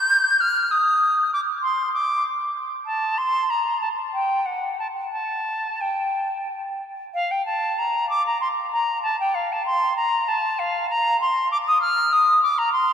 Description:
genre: classical, baroque-style fantasia for unaccompanied flute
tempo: 97 BPM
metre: 3/4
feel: rubato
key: G minor, Bb major from 7.1 s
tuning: A4 = 440 Hz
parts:
  - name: silver concert flute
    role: solo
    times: 0.0-12.9 s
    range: F5 to G6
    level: -20 LUFS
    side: equal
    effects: none
room: wet cathedral reverb, RT60 5.3 s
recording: none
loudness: -20 LUFS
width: side -8 dB against mid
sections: 0.0-7.1 A section; 7.1-12.9 A section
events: none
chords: none

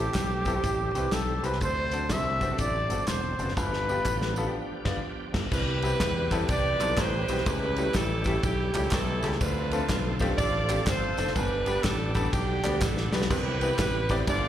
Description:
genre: uptempo gospel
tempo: 123 BPM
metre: 4/4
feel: swing 64% on 8ths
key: C major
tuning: A4 = 439 Hz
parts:
  - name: breathy trumpet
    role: melody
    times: 0.0-4.5 s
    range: G4 to E5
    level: -29 LUFS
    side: equal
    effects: slapback echo
  - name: clear grand piano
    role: accompaniment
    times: 0.0-14.5 s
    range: G2 to D5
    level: -33 LUFS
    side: left 3 dB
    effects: slapback echo
  - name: overdriven tonewheel organ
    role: sustained chords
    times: 0.0-14.5 s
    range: E3 to A4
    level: -36 LUFS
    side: right 3 dB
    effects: slow rotary speaker, chorus vibrato
  - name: fingered electric bass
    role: bass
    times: 0.0-14.5 s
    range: E1 to E2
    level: -30 LUFS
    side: equal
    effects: none
  - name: natural country drum kit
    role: drums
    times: 0.1-14.4 s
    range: crash cymbal, hi-hat, kick drum, ride cymbal, snare drum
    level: -31 LUFS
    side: equal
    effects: none
  - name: handclaps and tambourine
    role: percussion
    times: 0.1-14.4 s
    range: none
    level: -40 LUFS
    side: right 2 dB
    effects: none
  - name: edgy saxophone section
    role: melody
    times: 5.5-14.5 s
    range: B3 to D5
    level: -30 LUFS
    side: right 2 dB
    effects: slapback echo
room: light reverb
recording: live gig heard through the venue's PA, recital hall reverb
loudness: -25 LUFS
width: side -11 dB against mid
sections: 0.0-5.5 A section; 5.5-14.5 B section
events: drum fill 3.6-5.5, 12.8-13.3; band accent 4.5-5.5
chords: 0.0 Am7; 1.6 D7; 3.6 G7; 5.5 Cmaj7; 7.5 A7; 9.4 Dm7; 11.4 G; 13.3 Cmaj7

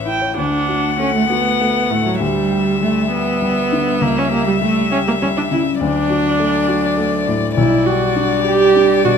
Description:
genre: quick classical-period movement for piano quartet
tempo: 67 BPM (dotted quarters)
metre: 6/8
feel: rubato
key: D major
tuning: A4 = 440 Hz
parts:
  - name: rich violin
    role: melody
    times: 0.0-9.2 s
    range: D5 to F#5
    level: -20 LUFS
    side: left 10 dB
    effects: none
  - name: warm grand piano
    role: accompaniment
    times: 0.0-9.2 s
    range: A1 to C#5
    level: -20 LUFS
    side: left 4 dB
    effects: none
  - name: warm viola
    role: accompaniment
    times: 0.1-9.1 s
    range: F#3 to G5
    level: -17 LUFS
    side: right 4 dB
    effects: none
  - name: warm cello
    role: second line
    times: 0.4-9.2 s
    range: F#3 to A3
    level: -25 LUFS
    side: right 8 dB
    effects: none
room: moderate recital hall reverb, RT60 1.3 s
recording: close, detailed microphones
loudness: -14 LUFS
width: side -7 dB against mid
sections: 0.4-9.2 A section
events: none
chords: 0.4 D; 2.2 Em7/D; 4.0 C#dim; 5.8 D; 7.6 G/B

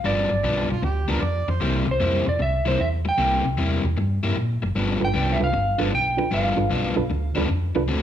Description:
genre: electric blues shuffle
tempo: 153 BPM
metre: 4/4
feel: swing 67% on 8ths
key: G mixolydian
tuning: A4 = 441 Hz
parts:
  - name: electric slide guitar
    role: melody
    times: 0.0-7.5 s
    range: C5 to G5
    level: -24 LUFS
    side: right 1 dB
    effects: none
  - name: overdriven semi-hollow guitar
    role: riff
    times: 0.0-8.0 s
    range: G2 to F#4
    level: -26 LUFS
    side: left 3 dB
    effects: none
  - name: hollow-body short-scale fingered electric bass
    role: bass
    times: 0.0-8.0 s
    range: F#1 to Bb2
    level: -24 LUFS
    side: right 1 dB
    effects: none
  - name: overdriven harmonica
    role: second line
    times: 0.7-1.7 s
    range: F4 to D5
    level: -30 LUFS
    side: right 5 dB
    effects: none
  - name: reed electric piano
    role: accompaniment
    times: 5.0-7.8 s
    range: D4 to B4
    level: -27 LUFS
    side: right 6 dB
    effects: fast tremolo
room: moderate large studio reverb, RT60 1.2 s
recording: band playing live in one room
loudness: -20 LUFS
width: side -10 dB against mid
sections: 0.0-8.0 A section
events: none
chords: 0.0 G7; 1.6 C7; 4.7 G7

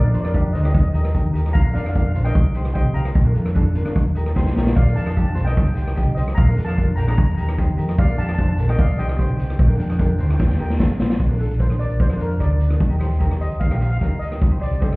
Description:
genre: calypso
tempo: 149 BPM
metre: 4/4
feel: straight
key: Bb major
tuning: A4 = 441 Hz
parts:
  - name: steel pan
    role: melody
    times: 0.0-15.0 s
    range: Bb4 to Bb5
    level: -30 LUFS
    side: equal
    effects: none
  - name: ukulele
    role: accompaniment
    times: 0.0-14.9 s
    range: C4 to Eb5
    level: -30 LUFS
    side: left 1 dB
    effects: none
  - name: hollow-body short-scale fingered electric bass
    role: bass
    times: 0.0-15.0 s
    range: G1 to Eb3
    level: -19 LUFS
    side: equal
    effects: none
  - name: street-band drum kit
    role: drums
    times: 0.1-15.0 s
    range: hi-hat, kick drum, rim click, snare drum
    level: -20 LUFS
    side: equal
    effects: none
  - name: guiro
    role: percussion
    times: 4.8-14.9 s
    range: none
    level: -50 LUFS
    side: right 3 dB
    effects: none
room: little or no reverb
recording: heard muffled through a wall, club reverb, EQ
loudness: -16 LUFS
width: side -24 dB against mid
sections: 0.0-11.2 A section; 11.2-15.0 B section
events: drum fill 4.4-4.8, 10.4-11.2; steel pan solo 11.2-15.0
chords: 0.0 Bb; 0.7 Eb; 1.5 Bb; 2.3 Cm; 3.2 Bb; 4.0 Eb; 4.8 Bb; 5.6 Cm; 6.4 Bb; 7.2 Eb; 8.0 Bb; 8.8 Cm; 9.6 Bb; 10.4 Eb; 10.8 F; 11.2 Bb; 12.8 Eb; 14.4 Cm

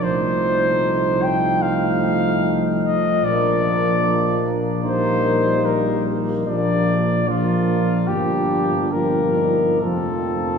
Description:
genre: classical, hymn-like piece for brass band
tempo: 74 BPM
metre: 4/4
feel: rubato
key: Bb major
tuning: A4 = 440 Hz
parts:
  - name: clear flugelhorn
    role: melody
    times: 0.0-10.6 s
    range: F4 to G5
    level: -21 LUFS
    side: left 2 dB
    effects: none
  - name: mellow flugelhorn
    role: second line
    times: 0.0-10.6 s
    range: D4 to F4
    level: -27 LUFS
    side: right 2 dB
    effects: none
  - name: clear trombone section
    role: accompaniment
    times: 0.0-10.6 s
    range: A3 to C4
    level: -25 LUFS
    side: equal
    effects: none
  - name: mellow euphonium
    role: accompaniment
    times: 0.0-10.6 s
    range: F3 to G3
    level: -24 LUFS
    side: right 3 dB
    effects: none
  - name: dark tuba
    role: bass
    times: 0.0-10.6 s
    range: F1 to C2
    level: -25 LUFS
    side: left 1 dB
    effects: none
room: wet cathedral reverb, RT60 5.0 s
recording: heard from further back in the room, studio reverb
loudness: -17 LUFS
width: side -6 dB against mid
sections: 0.0-10.6 A section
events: none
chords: 0.0 F7/C; 3.2 Bb; 4.8 Eb/Bb; 6.5 Bb; 8.1 Gm7; 9.8 F

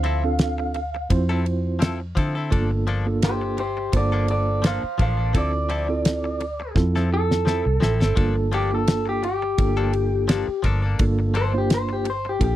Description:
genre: straight-eighth soul blues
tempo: 85 BPM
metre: 4/4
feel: swing 55% on 16ths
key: unclear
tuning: A4 = 441 Hz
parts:
  - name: electric guitar through a small old amp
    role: melody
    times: 0.0-12.6 s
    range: G4 to F5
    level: -25 LUFS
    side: left 1 dB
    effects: none
  - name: mellow reed electric piano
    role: accompaniment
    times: 0.0-12.6 s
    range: Bb3 to C5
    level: -27 LUFS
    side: right 4 dB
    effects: fast tremolo
  - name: direct-recorded clean electric guitar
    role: stabs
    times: 0.0-12.5 s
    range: F3 to A4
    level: -29 LUFS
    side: left 5 dB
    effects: none
  - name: vintage muted fingered electric bass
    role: bass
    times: 0.0-12.6 s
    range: G1 to D3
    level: -24 LUFS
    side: equal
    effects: none
  - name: damped 70s drum kit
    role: drums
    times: 0.0-12.6 s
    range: kick drum, ride cymbal, snare drum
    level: -21 LUFS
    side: equal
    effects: none
room: little or no reverb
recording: dry, close 1970s-style studio recording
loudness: -20 LUFS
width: side -13 dB against mid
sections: 0.0-12.6 A section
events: clean electric guitar solo 0.0-12.6; drum fill 6.8-8.2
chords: 0.0 Dm9; 2.5 Gm9; 5.3 Dm9; 8.2 Gm9

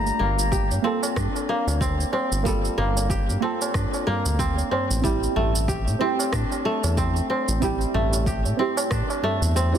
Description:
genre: organic downtempo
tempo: 93 BPM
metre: 4/4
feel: swing 58% on 16ths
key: G dorian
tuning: A4 = 441 Hz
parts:
  - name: mellow clarinet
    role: melody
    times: 0.0-0.8 s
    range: Bb5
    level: -29 LUFS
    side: left 7 dB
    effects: tape echo
  - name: deep mellow chord stab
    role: accompaniment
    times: 0.0-9.8 s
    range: A3 to A4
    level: -29 LUFS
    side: right 4 dB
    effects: chorus, sidechain pumping, tape echo
  - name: kora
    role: arpeggios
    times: 0.0-9.8 s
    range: G3 to G4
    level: -26 LUFS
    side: equal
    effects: tape echo
  - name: round analog bass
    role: bass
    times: 0.0-9.8 s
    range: G1 to A2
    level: -24 LUFS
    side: equal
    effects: tube saturation, sidechain pumping
  - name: electronic shaker and rim click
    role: drums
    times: 0.1-9.8 s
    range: none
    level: -32 LUFS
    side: right 3 dB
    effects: soft clipping on snare
  - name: tabla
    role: percussion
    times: 0.2-9.8 s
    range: none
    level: -33 LUFS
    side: right 2 dB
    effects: none
  - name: electronic kick drum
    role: drums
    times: 0.5-9.1 s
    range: none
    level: -28 LUFS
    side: equal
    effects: none
room: light reverb, studio ambience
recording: dense, heavily limited modern master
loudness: -21 LUFS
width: side -9 dB against mid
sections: 0.0-9.8 A section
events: kick drops out 9.6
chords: 0.0 Gm7; 5.0 Am7

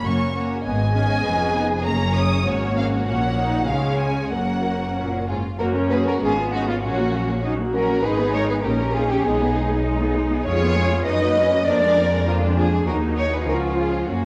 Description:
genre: quick classical-period movement for string orchestra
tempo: 99 BPM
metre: 2/4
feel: straight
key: F# major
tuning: A4 = 440 Hz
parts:
  - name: rich studio violin section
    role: melody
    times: 0.0-14.2 s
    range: C#4 to D#6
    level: -30 LUFS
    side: equal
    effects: none
  - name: rich studio violin section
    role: second line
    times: 0.0-14.2 s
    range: E#4 to D#5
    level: -26 LUFS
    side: equal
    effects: none
  - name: rich studio viola section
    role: accompaniment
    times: 0.0-14.2 s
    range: E#3 to A#4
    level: -28 LUFS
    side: equal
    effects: none
  - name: clear studio cello section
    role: bass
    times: 0.1-14.2 s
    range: E#2 to E#4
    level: -29 LUFS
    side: equal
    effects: none
  - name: clear studio double bass section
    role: bass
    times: 0.1-14.2 s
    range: E#1 to F#2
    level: -27 LUFS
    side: equal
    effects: none
room: wet recital hall reverb, RT60 1.7 s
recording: worn, warbling old tape, cassette tape, warbly pitch drift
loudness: -21 LUFS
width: mono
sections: 0.0-5.6 A section; 5.6-14.2 B section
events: none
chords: 0.0 F#; 0.7 C#7/G#; 1.9 F#; 3.1 F#/A#; 3.7 C#; 4.3 F#; 6.2 C#7/G#; 6.8 F#/A#; 8.0 G#m; 8.6 D#7/A#; 9.2 G#m/B; 10.5 C#7/E#; 11.1 F#; 11.7 A#7/E#; 12.9 D#m; 13.5 C#

